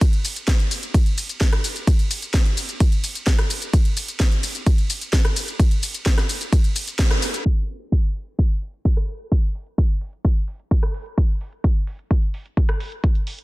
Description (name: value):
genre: EDM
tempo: 129 BPM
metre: 4/4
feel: straight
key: none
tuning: none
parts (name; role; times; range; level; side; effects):
- electronic kick drum; drums; 0.0-13.1 s; none; -18 LUFS; equal; none
- house drum kit; drums; 0.0-13.4 s; crash cymbal, hi-hat, ride cymbal, rim click, shaker, snare drum; -26 LUFS; equal; none
room: digital ambience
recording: dense, heavily limited modern master, low-pass filter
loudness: -19 LUFS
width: side -21 dB against mid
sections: 0.0-7.5 A section; 7.5-13.4 B section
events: drop 0.0-7.5; band accent 7.0; filter sweep 7.5-13.4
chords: none